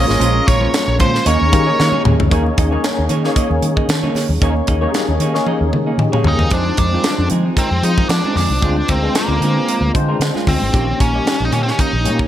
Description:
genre	polished 1980s jazz-funk pop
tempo	114 BPM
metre	4/4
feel	swing 54% on 16ths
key	F dorian from 6.5 s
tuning	A4 = 440 Hz
part	nasal lead guitar with a parked wah	melody	0.0-2.0, 6.3-12.3 s	Bb3 to Eb5	-20 LUFS	equal	overdrive
part	clear horn section	second line	0.0-2.0 s	Db4 to Bb4	-26 LUFS	right 1 dB	tape echo
part	barky tine electric piano	accompaniment	0.0-12.3 s	Eb3 to Ab5	-20 LUFS	left 3 dB	overdrive, ensemble chorus
part	semi-hollow electric guitar	riff	0.0-12.3 s	Eb3 to Eb5	-24 LUFS	right 6 dB	wide subtle chorus
part	vintage muted fingered electric bass	bass	0.0-12.2 s	Ab1 to F3	-18 LUFS	equal	none
part	tight funk drum kit	drums	0.1-12.3 s	hi-hat, kick drum, snare drum, toms	-18 LUFS	equal	gated reverb
part	congas	percussion	0.1-12.2 s	none	-30 LUFS	left 1 dB	none
room	small room ambience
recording	none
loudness	-13 LUFS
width	side -11 dB against mid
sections	0.0-2.3 A section; 2.3-6.5 B section; 6.5-12.3 C section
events	drum fill 1.8-2.3, 5.5-6.5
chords	0.0 Bbm9; 1.3 Eb7sus4; 6.5 Fm7; 8.6 Dm7b5; 10.7 Eb7/Bb

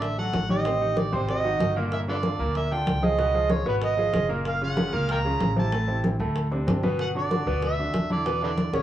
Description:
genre	latin, salsa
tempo	189 BPM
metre	4/4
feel	straight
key	unclear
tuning	A4 = 440 Hz
part	overdriven harmonica	melody	0.0-8.8 s	A4 to A#5	-27 LUFS	right 3 dB	cassette tape
part	bright concert grand piano	accompaniment	0.0-8.8 s	A2 to D5	-28 LUFS	right 2 dB	cassette tape
part	upright bass	bass	0.0-8.8 s	F#1 to E2	-29 LUFS	equal	none
part	bongos	percussion	0.0-8.8 s	none	-35 LUFS	left 3 dB	none
part	congas	percussion	0.0-8.8 s	none	-29 LUFS	left 1 dB	none
room	moderate spring reverb, RT60 1.1 s, small room ambience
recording	home recording on cassette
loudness	-22 LUFS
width	side -12 dB against mid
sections	0.0-8.8 A section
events	none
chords	0.0 D; 0.7 Am7b5; 1.3 G#9; 1.9 Gm7; 3.2 C#7; 4.5 F#maj7; 5.7 Am; 6.4 D5; 7.0 Gmaj7; 8.3 E5

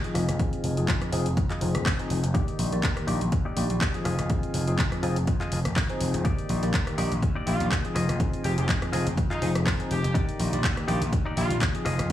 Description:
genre	filtered disco house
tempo	123 BPM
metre	4/4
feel	swing 55% on 16ths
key	Eb major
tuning	A4 = 440 Hz
part	bell-like tine electric piano	accompaniment	0.0-12.1 s	Eb3 to D5	-32 LUFS	left 1 dB	phaser, sidechain pumping, low-pass filter
part	direct-recorded clean electric guitar	riff	0.0-12.1 s	Eb4 to F5	-35 LUFS	left 3 dB	sidechain pumping, low-pass filter
part	house drum kit	drums	0.0-12.1 s	handclaps, hi-hat, rim click	-32 LUFS	equal	sidechain pumping on hats, small room reverb
part	gritty slap bass	bass	0.2-12.1 s	F1 to F2	-28 LUFS	equal	overdrive, sidechain pumping, low-pass filter
part	electronic kick drum	drums	0.4-12.1 s	none	-27 LUFS	equal	small room reverb
part	clear horn section	melody	7.5-11.6 s	Eb4 to G4	-34 LUFS	left 1 dB	vintage 12-bit sampler grit, sidechain pumping, low-pass filter, digital delay
room	light reverb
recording	studio reverb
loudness	-23 LUFS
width	side -12 dB against mid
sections	0.0-12.1 A section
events	filter sweep 0.0-12.1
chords	0.2 Fm7; 2.3 Ebmaj7; 4.1 Fm7; 6.2 Ebmaj7; 8.0 Fm7; 10.2 Ebmaj7

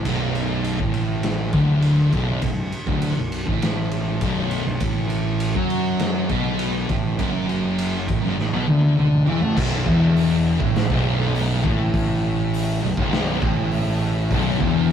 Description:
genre	stoner and doom metal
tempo	101 BPM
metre	4/4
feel	straight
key	unclear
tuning	A4 = 440 Hz
part	thick fuzz guitar	riff	0.0-14.9 s	B1 to A3	-23 LUFS	left 2 dB	distortion
part	thick fuzz guitar	riff	0.0-14.9 s	B1 to A3	-25 LUFS	right 4 dB	distortion
part	fuzz fingered electric bass	bass	0.0-14.9 s	B0 to A2	-26 LUFS	equal	overdrive
part	raw garage drum kit	drums	0.1-14.7 s	crash cymbal, hi-hat, kick drum, ride cymbal, snare drum, toms	-26 LUFS	equal	none
part	sludgy distorted guitar	riff	9.6-14.9 s	B1 to A2	-27 LUFS	equal	overdrive
room	moderate studio reverb, RT60 0.6 s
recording	rough rehearsal-room recording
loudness	-18 LUFS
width	side -8 dB against mid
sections	0.0-9.6 A section; 9.6-14.9 B section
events	drum fill 8.4-9.6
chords	0.1 Bm; 4.8 A5; 9.6 B7sus4

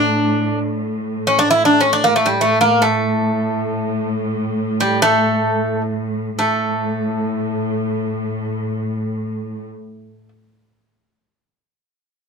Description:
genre	Turkish makam ensemble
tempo	free time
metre	none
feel	none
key	A makam hicaz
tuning	A4 = 441 Hz
part	Greek bouzouki	melody	0.0-10.3 s	G3 to E4	-16 LUFS	equal	none
part	rich studio cello section	drone	0.0-9.7 s	A2	-21 LUFS	equal	none
room	moderate studio reverb, RT60 0.6 s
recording	none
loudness	-16 LUFS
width	side -5 dB against mid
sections	0.0-6.4 A section; 6.4-8.8 B section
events	none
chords	none

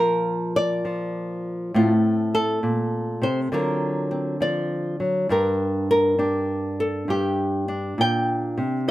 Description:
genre	solo jazz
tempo	67 BPM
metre	4/4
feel	swing 66% on 8ths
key	G minor from 5.3 s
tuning	A4 = 439 Hz
part	nylon-string guitar	solo	0.0-8.9 s	G2 to G5	-21 LUFS	equal	none
room	light reverb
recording	none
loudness	-21 LUFS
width	side -15 dB against mid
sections	0.0-5.3 A section; 5.3-8.9 B section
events	none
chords	0.0 Bb; 1.7 Am; 3.5 D7alt; 5.3 Gmadd9

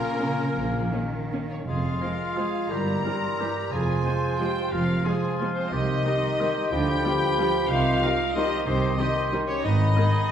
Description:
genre	classical, orchestral ballroom waltz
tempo	151-200 BPM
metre	3/4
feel	rubato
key	F minor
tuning	A4 = 440 Hz
part	rich symphonic violin section	melody	0.0-10.3 s	Bb3 to Bb5	-32 LUFS	left 3 dB	none
part	bright clarinet	second line	0.0-10.3 s	Db4 to G4	-35 LUFS	left 1 dB	none
part	mellow concert flute	second line	0.0-10.3 s	F4 to C6	-34 LUFS	left 2 dB	none
part	warm oboe	second line	0.0-10.3 s	Eb4 to Eb5	-34 LUFS	equal	none
part	warm studio violin section	second line	0.0-10.0 s	B3 to Bb4	-40 LUFS	left 2 dB	none
part	clear bassoon	accompaniment	0.0-10.3 s	Eb3 to Bb3	-32 LUFS	equal	none
part	mellow French horn section	sustained chords	0.0-10.3 s	Bb3 to Bb4	-31 LUFS	equal	none
part	rich studio cello section	bass	0.0-9.9 s	F2 to F3	-30 LUFS	right 1 dB	none
part	warm studio viola section	accompaniment	0.2-10.0 s	Eb3 to Db4	-34 LUFS	equal	none
part	mellow tuba	bass	0.6-0.9 s	Bb1	-35 LUFS	left 1 dB	none
part	warm studio double bass section	bass	0.6-9.9 s	F1 to D2	-29 LUFS	right 1 dB	none
room	wet recital hall reverb, RT60 1.8 s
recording	heard from further back in the room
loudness	-22 LUFS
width	side -9 dB against mid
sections	0.0-1.7 A section; 1.7-10.3 B section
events	none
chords	0.0 Bbm; 1.7 Fm; 2.7 C7/G; 3.7 Fm; 5.7 Cm; 6.7 G7/D; 7.7 Cm; 9.6 Abm

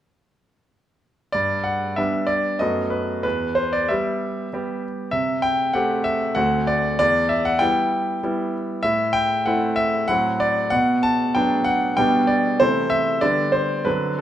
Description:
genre	classical-period piano sonatina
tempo	96 BPM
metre	3/4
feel	rubato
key	G major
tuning	A4 = 440 Hz
part	bright grand piano	solo	1.3-14.2 s	D2 to A5	-19 LUFS	equal	none
room	moderate recital hall reverb, RT60 1.5 s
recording	none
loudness	-19 LUFS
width	side -11 dB against mid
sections	1.3-14.2 A section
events	none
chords	1.3 G; 2.6 B7/F#; 3.2 Em; 5.1 Am7/C; 6.4 D7; 7.0 Em; 8.8 Am; 10.1 F#dim/A; 10.7 Bm; 12.0 G/B; 12.6 Am/C; 13.2 G/D

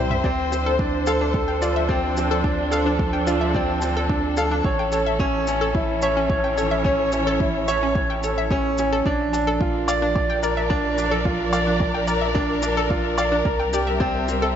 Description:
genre	piano and strings electronica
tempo	109 BPM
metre	4/4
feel	straight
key	D minor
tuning	A4 = 439 Hz
part	warm studio string section	sustained chords	0.0-14.6 s	E3 to E5	-26 LUFS	equal	sidechain pumping
part	bright upright piano	riff	0.0-14.6 s	C4 to D5	-23 LUFS	right 1 dB	tape echo
part	warm sub bass	bass	0.0-14.6 s	A1 to D2	-28 LUFS	equal	sidechain pumping
part	analog pluck	arpeggios	0.1-14.5 s	C#4 to G5	-28 LUFS	left 2 dB	chorus, vintage 12-bit sampler grit, sidechain pumping, tape echo
part	electronic toms and shaker	drums	0.1-14.4 s	none	-34 LUFS	left 1 dB	none
part	electronic kick drum	drums	0.2-14.1 s	none	-25 LUFS	equal	none
room	moderate concert hall reverb, RT60 2.1 s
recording	nothing above 7.7 kHz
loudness	-19 LUFS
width	side -9 dB against mid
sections	0.0-14.6 A section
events	break 0.0; drum fill 0.0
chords	0.2 Dm7; 4.6 A; 9.1 Bb; 13.5 C7

